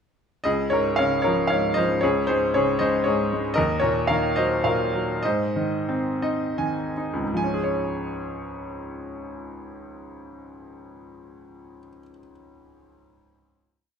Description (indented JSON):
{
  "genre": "classical, lyrical solo piano",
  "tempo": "71-120 BPM",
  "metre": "3/4",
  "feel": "rubato",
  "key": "Db major",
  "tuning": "A4 = 440 Hz",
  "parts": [
    { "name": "bright baby grand piano", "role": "solo", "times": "0.4-14.0 s", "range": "Db2 to Ab5", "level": "-22 LUFS", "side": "equal", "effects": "none" }
  ],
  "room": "light reverb",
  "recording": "none",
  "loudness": "-21 LUFS",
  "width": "side -7 dB against mid",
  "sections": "0.4-7.4 A section; 7.4-12.3 final chord",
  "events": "slowing down 3.6-7.4; grand piano fill 5.9-7.4",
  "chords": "0.4 Db; 2.0 Abadd11/Db; 3.6 Ebm; 5.2 Ab; 7.4 Db"
}